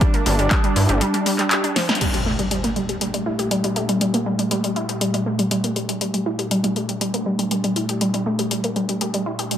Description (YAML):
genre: melodic techno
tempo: 120 BPM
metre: 4/4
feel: straight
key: G minor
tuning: A4 = 439 Hz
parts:
  - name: analog synth brass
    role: melody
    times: 0.0-1.9 s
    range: D4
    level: -26 LUFS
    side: right 4 dB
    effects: chorus, vintage 12-bit sampler grit, sidechain pumping, tape echo
  - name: wide unison pluck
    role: arpeggios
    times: 0.0-9.6 s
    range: F3 to G4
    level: -22 LUFS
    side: equal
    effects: sidechain pumping, dub echo
  - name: electronic kick drum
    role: drums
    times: 0.0-0.6 s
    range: none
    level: -18 LUFS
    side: equal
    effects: overdrive
  - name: punchy analog drum machine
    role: drums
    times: 0.0-9.6 s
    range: crash cymbal, handclaps, hi-hat, snare drum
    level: -24 LUFS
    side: left 2 dB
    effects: overdrive, dub echo
  - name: gritty driven synth bass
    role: bass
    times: 0.3-1.0 s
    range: G1 to G2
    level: -18 LUFS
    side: equal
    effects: sidechain pumping
  - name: sweeping resonant pad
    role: sustained chords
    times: 2.0-9.6 s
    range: Bb2 to G4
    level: -28 LUFS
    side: equal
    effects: chorus, sidechain pumping
  - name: impact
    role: sound effects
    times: 2.0-4.0 s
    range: none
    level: -27 LUFS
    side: equal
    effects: none
room: wet spring reverb, RT60 1.8 s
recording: echo-heavy mix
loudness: -19 LUFS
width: side -10 dB against mid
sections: 0.0-2.0 A section; 2.0-9.6 B section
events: kick drops out 1.0-2.0; drum fill 1.8; band accent 1.9; impact 2.0-4.0; filter sweep on synth arpeggio sound 2.0-9.6; filter sweep on analog synth pad 2.0-9.6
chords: 0.0 N.C.; 2.0 Gmadd9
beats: | 0.01 0.51 1.01 1.51 | 2.01 2.51 3.01 3.51 | 4.01 4.51 5.01 5.51 | 6.01 6.51 7.01 7.51 | 8.01 8.51 9.01 9.51